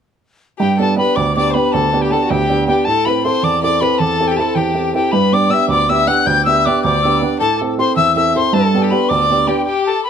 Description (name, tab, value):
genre	celtic folk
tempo	106 BPM (dotted quarters)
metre	6/8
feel	straight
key	G major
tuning	A4 = 440 Hz
part	bright wooden whistle	melody	0.6-10.1 s	G5 to G6	-17 LUFS	left 2 dB	plate reverb, tape echo
part	bright fiddle	second line	0.6-10.1 s	F#4 to G5	-19 LUFS	left 8 dB	none
part	warm upright piano	accompaniment	0.6-9.6 s	D2 to A4	-16 LUFS	right 5 dB	none
room	moderate studio reverb, RT60 0.5 s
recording	dark, warm production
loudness	-12 LUFS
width	side -8 dB against mid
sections	0.6-9.7 A section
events	none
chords	0.6 G; 2.9 Am; 5.1 G; 7.4 Am; 8.5 G